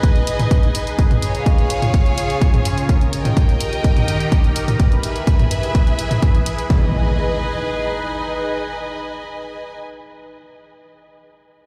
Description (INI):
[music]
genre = melodic techno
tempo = 126 BPM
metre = 4/4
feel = straight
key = G# harmonic minor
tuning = A4 = 439 Hz
[part]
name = evolving wavetable pad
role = sustained chords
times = 0.0-9.7 s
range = C#3 to B5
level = -28 LUFS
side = equal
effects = phaser, built-in reverb, sidechain pumping
[part]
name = electronic kick drum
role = drums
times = 0.0-6.8 s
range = none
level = -17 LUFS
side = equal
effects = none
[part]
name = house drum kit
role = drums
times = 0.0-6.7 s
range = hi-hat, toms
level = -25 LUFS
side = equal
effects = sidechain pumping on hats, sidechain pumping on toms
[part]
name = bright studio string section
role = texture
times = 0.0-9.8 s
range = G#4 to G#5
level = -28 LUFS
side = equal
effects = sidechain pumping
[part]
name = impact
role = sound effects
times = 6.7-9.7 s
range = none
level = -25 LUFS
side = equal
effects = none
[sound]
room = digital ambience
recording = played on a big sound system in a bare room, large studio reverb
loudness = -18 LUFS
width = mono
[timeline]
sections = 0.0-6.7 A section; 6.7-10.5 B section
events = none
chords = 0.0 G#m; 1.0 C#; 2.9 D#; 4.8 E; 6.7 G#m